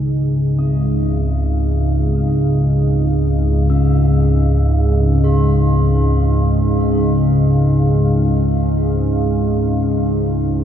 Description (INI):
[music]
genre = dark ambient drone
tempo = free time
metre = none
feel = none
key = C# major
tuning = A4 = 439 Hz
[part]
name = dark analog pad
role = sustained chords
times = 0.0-10.6 s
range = D#4 to E#5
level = -23 LUFS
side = right 3 dB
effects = chorus
[part]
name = analog drone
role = drone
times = 0.0-10.6 s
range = C#2 to G#2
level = -14 LUFS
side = equal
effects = chorus
[part]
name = bronze singing bowl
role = arpeggios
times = 0.6-10.6 s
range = B#3 to G#4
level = -27 LUFS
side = left 2 dB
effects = diffuse ambient delay
[sound]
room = wet cathedral reverb, RT60 5.9 s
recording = dark, warm production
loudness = -13 LUFS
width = side -9 dB against mid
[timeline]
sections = 0.0-10.6 A section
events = fade-in on singing bowl 0.0-10.6; fade-out on analog synth pad 0.0-10.6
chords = 0.0 C#sus2